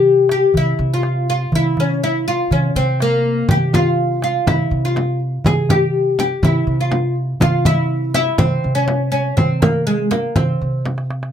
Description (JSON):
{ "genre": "Arabic maqam ensemble", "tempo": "122 BPM", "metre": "4/4", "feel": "straight", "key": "C maqam hijaz", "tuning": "A4 = 439 Hz", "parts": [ { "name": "oud", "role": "melody", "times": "0.0-11.1 s", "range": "Ab3 to Ab4", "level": "-18 LUFS", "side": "left 2 dB", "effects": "none" }, { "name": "upright bass", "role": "bass", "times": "0.0-11.3 s", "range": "C3", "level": "-20 LUFS", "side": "equal", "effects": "none" }, { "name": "darbuka", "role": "percussion", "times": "0.3-11.3 s", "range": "none", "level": "-21 LUFS", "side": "right 2 dB", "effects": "none" }, { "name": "frame drum", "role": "percussion", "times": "3.5-11.0 s", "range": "none", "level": "-19 LUFS", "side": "left 1 dB", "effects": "none" } ], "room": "little or no reverb", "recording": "none", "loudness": "-15 LUFS", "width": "side -9 dB against mid", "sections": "0.0-11.3 A section", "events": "drum fill 10.9-11.3", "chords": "none", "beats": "0.06 0.55 1.04 | 1.53 2.02 2.51 3.00 | 3.49 3.98 4.47 4.96 | 5.45 5.95 6.44 6.93 | 7.42 7.91 8.40 8.89 | 9.38 9.87 10.37 10.86" }